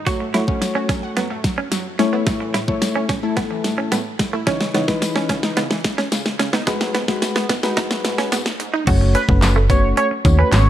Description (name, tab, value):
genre	dance-pop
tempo	109 BPM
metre	4/4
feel	straight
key	unclear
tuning	A4 = 440 Hz
part	soft electric-piano-like synth keys	accompaniment	0.1-10.7 s	E3 to C#5	-22 LUFS	left 3 dB	chorus, sidechain pumping
part	wide unison pluck	arpeggios	0.1-8.8 s	G#2 to F#5	-30 LUFS	right 2 dB	sidechain pumping, ping-pong delay
part	direct-recorded clean electric guitar	riff	0.1-10.6 s	G#3 to F#4	-25 LUFS	right 5 dB	lush chorus
part	pop drum kit	drums	0.1-10.7 s	crash cymbal, handclaps, hi-hat, kick drum, snare drum	-21 LUFS	equal	overdrive
part	tambourine	percussion	0.1-10.7 s	none	-35 LUFS	left 9 dB	none
part	slap-like FM bass	bass	8.9-10.7 s	F#1 to D#2	-15 LUFS	equal	sidechain pumping
part	octave-doubled lead	melody	9.1-10.7 s	B4 to C#5	-21 LUFS	right 2 dB	chorus, sidechain pumping
room	light reverb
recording	dark, warm production, high-pass filter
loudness	-17 LUFS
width	side -12 dB against mid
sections	0.0-8.9 A section; 8.9-10.7 B section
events	build-up 0.0-8.9; drum fill 0.0-8.9; drop 8.9-10.7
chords	0.1 F#m; 2.0 A; 4.5 C#madd9; 6.7 G#m7; 8.9 F#m